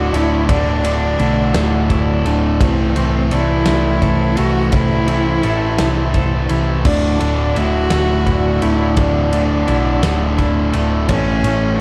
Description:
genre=post-rock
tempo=57 BPM (dotted quarters)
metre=6/8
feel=straight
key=D major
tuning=A4 = 440 Hz
part: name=clear cello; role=melody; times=0.0-11.8 s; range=C4 to F#4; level=-24 LUFS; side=equal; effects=analog delay
part: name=twangy electric guitar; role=arpeggios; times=0.0-11.8 s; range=D2 to A4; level=-29 LUFS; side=equal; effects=harmonic tremolo, analog delay
part: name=vibraphone with hard mallets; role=arpeggios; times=0.0-11.8 s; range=C5 to F#5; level=-30 LUFS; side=equal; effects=analog delay
part: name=fuzz guitar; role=riff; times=0.0-11.8 s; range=D2 to A3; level=-24 LUFS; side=equal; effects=distortion
part: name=sludgy distorted guitar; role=riff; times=0.0-11.8 s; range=D2 to A3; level=-23 LUFS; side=equal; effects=overdrive
part: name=hollow-body short-scale picked electric bass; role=bass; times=0.0-11.8 s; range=D1 to C2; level=-21 LUFS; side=equal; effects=none
part: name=big rock drum kit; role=drums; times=0.1-11.6 s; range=crash cymbal, kick drum, ride cymbal, snare drum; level=-24 LUFS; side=equal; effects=none
room=light reverb, studio reverb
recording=dark, warm production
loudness=-16 LUFS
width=mono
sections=0.0-11.8 A section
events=none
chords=0.0 Dadd9; 2.6 Am/C; 6.9 Dadd9; 11.1 A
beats=| 0.49 1.55 | 2.61 3.67 | 4.73 5.79 | 6.85 7.91 | 8.97 10.03 | 11.09

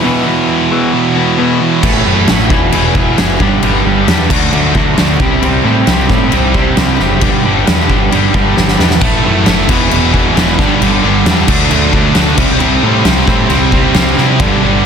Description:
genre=quiet-loud alternative rock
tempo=134 BPM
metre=4/4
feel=straight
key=unclear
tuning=A4 = 440 Hz
part: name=twangy electric guitar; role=arpeggios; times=0.0-1.8 s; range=E2 to E3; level=-18 LUFS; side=left 6 dB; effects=digital delay
part: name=crunchy overdriven guitar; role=riff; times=0.0-14.9 s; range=G2 to A4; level=-16 LUFS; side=left 13 dB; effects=harmonic tremolo
part: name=distorted electric guitar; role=riff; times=0.0-14.8 s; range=E2 to D4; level=-15 LUFS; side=right 11 dB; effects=distortion
part: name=heavy high-gain guitar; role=riff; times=0.0-1.8, 9.0-14.8 s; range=E2 to D4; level=-16 LUFS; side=equal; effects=distortion
part: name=growling picked electric bass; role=bass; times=1.8-14.8 s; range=E1 to C3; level=-16 LUFS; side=equal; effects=overdrive
part: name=oversized low-tuned drum kit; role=drums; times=1.8-14.5 s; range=crash cymbal, kick drum, snare drum, splash cymbal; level=-13 LUFS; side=equal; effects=none
room=little or no reverb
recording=dense, heavily limited modern master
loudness=-8 LUFS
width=side -7 dB against mid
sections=0.0-1.8 A section; 1.8-14.9 B section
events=break 0.0-1.8; drum fill 8.6-9.0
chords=0.0 Esus2; 1.8 Asus2; 2.5 E; 3.4 G; 4.3 D; 5.2 C; 7.2 G; 9.0 Asus2; 9.7 E; 10.6 G; 11.5 D; 12.4 C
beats=| 0.03 0.48 0.93 1.38 | 1.83 2.28 2.73 3.18 | 3.63 4.08 4.53 4.98 | 5.42 5.87 6.32 6.77 | 7.22 7.67 8.12 8.57 | 9.02 9.46 9.91 10.36 | 10.81 11.26 11.71 12.16 | 12.60 13.05 13.50 13.95 | 14.40 14.85

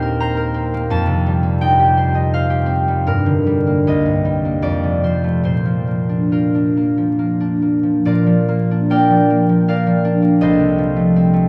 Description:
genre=classical, solo harp piece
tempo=67-87 BPM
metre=3/4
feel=rubato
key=Bb major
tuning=A4 = 440 Hz
part: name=concert harp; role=solo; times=0.0-11.5 s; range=C2 to Bb5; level=-16 LUFS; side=equal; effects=none
room=wet cathedral reverb, RT60 6.8 s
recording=dark, warm production, vinyl crackle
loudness=-16 LUFS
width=mono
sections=0.0-8.0 A section; 8.0-11.5 A section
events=none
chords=0.0 Cm7/Eb; 0.9 F9; 3.1 Gm; 3.9 Cm7; 4.7 F7; 5.5 Bb; 10.4 F7/C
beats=0.22 | 0.91 1.62 2.33 | 3.07 3.87 4.65 | 5.48 6.35 7.20 | 8.04 8.89 9.67 | 10.39 11.11

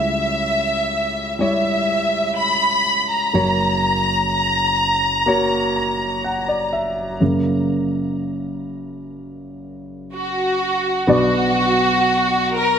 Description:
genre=pop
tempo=62 BPM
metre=4/4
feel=straight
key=unclear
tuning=A4 = 444 Hz
part: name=warm studio violin section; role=melody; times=0.0-12.8 s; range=F#4 to B5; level=-18 LUFS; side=equal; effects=none
part: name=dark concert grand piano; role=accompaniment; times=0.0-12.8 s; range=F#1 to A#5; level=-21 LUFS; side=equal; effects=none
room=wet scoring stage reverb, RT60 1.9 s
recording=none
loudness=-16 LUFS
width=side -8 dB against mid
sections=0.0-7.2 A section; 7.2-11.1 B section; 11.1-12.8 C section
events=grand piano fill 5.3-7.2; grand piano solo 7.2-11.1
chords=0.0 C#dim; 3.3 F#; 11.1 Bm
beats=0.43 1.40 2.37 | 3.34 4.31 5.27 6.24 | 7.21 8.18 9.14 10.11 | 11.08 12.05

